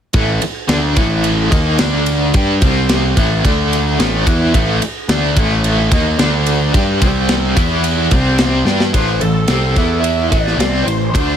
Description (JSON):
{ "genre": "hard rock", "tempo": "109 BPM", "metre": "4/4", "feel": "straight", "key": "A minor", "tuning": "A4 = 438 Hz", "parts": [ { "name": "biting overdriven guitar", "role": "riff", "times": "0.1-11.4 s", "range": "A2 to G4", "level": "-16 LUFS", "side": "equal", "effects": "tremolo" }, { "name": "fuzz picked electric bass", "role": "bass", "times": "0.1-11.4 s", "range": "A1 to G2", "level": "-17 LUFS", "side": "equal", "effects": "overdrive" }, { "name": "tight metal drum kit", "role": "drums", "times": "0.1-11.3 s", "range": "kick drum, ride cymbal, snare drum", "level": "-17 LUFS", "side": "equal", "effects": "none" }, { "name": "lead guitar through a small cranked amp", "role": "melody", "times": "8.9-11.4 s", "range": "A4 to E5", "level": "-20 LUFS", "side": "equal", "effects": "overdrive" } ], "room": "light reverb, small room ambience", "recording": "none", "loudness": "-12 LUFS", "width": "side -9 dB against mid", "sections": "0.2-8.9 A section; 8.9-11.4 B section", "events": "drum fill 8.7", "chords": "0.2 A5; 1.8 D5; 2.4 G5; 2.6 C5; 3.2 A5; 3.5 D5; 4.0 A5; 6.2 D5; 6.7 G5; 7.0 C5; 7.6 E5; 8.1 C5; 8.7 G5; 8.9 Am; 9.8 E5; 10.3 Am" }